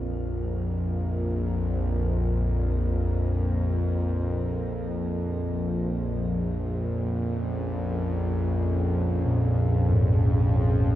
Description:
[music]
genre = dark ambient drone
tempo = free time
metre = none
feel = none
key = unclear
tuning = A4 = 440 Hz
[part]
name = dark analog pad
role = sustained chords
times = 0.0-11.0 s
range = Bb3 to Bb4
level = -37 LUFS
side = left 1 dB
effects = chorus, shimmer reverb
[part]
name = quartz singing bowl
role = arpeggios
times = 0.0-11.0 s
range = Ab2 to F3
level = -29 LUFS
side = equal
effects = none
[part]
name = bowed-like drone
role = drone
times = 0.0-11.0 s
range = Bb1 to F2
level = -25 LUFS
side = equal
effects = built-in reverb
[sound]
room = moderate huge ambient reverb, RT60 8.0 s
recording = none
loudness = -24 LUFS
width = side -14 dB against mid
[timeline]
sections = 0.0-11.0 A section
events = fade-in on analog synth pad 0.0-11.0; filter sweep on synth drone 0.0-11.0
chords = 0.0 Bbm

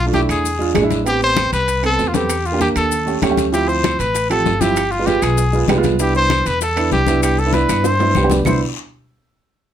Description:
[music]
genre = Afro-Cuban jazz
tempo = 195 BPM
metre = 4/4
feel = straight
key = C major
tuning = A4 = 441 Hz
[part]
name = bright trumpet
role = melody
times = 0.0-8.6 s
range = F4 to C5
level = -18 LUFS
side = equal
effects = none
[part]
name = upright bass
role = bass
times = 0.0-8.6 s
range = G1 to G2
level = -21 LUFS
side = left 1 dB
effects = none
[part]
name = warm upright piano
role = accompaniment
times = 0.1-8.6 s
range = F3 to A4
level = -19 LUFS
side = right 4 dB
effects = none
[part]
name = congas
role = percussion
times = 0.1-8.5 s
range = none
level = -24 LUFS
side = left 4 dB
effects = none
[part]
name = guiro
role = percussion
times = 0.1-8.5 s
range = none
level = -32 LUFS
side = left 9 dB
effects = none
[part]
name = maracas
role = percussion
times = 0.1-8.5 s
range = none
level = -30 LUFS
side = left 11 dB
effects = none
[part]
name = timbales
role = percussion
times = 0.1-8.5 s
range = none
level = -28 LUFS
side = right 6 dB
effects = none
[part]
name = claves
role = percussion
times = 0.3-8.5 s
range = none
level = -32 LUFS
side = right 1 dB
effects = none
[part]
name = bongos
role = percussion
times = 3.5-8.5 s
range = none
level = -27 LUFS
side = left 8 dB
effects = none
[sound]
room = moderate studio ambience, RT60 0.4 s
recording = none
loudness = -14 LUFS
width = side -10 dB against mid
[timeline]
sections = 0.0-8.5 A section; 8.5-9.7 B section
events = drum fill 7.5-8.5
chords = 0.4 E7b9; 1.1 Am7; 2.3 Em7b5; 2.9 Eb7#11; 3.5 Dm9; 4.8 G7b9; 6.0 Cmaj9

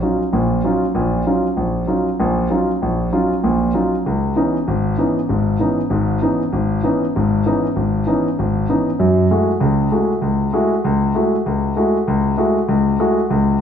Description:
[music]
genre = jazz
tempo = 194 BPM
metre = 4/4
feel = swing 60% on 8ths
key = F# minor from 9.0 s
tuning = A4 = 440 Hz
[part]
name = warm concert grand piano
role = solo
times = 0.0-13.6 s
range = Ab1 to F#4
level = -15 LUFS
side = equal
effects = none
[sound]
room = wet large studio reverb, RT60 1.2 s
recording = band playing live in one room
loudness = -15 LUFS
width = side -8 dB against mid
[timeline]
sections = 0.0-9.0 A section; 9.0-13.6 B section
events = none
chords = 0.0 Ebm9; 4.1 Dbm9; 9.0 F#m9

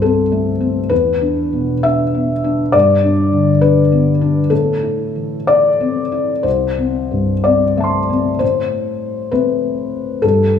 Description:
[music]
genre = neoclassical minimalist piano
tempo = 60-69 BPM (dotted quarters)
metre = 6/8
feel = rubato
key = A minor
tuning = A4 = 440 Hz
[part]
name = felt-muted upright piano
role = solo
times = 0.0-10.6 s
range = C2 to C6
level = -13 LUFS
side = left 2 dB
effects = none
[sound]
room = wet scoring stage reverb, RT60 1.7 s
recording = small room ambience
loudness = -13 LUFS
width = side -8 dB against mid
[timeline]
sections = 0.0-8.4 A section; 8.4-10.6 B section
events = none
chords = 0.0 C5; 0.9 E5; 2.7 G; 4.5 Am; 6.5 C6; 8.4 Am

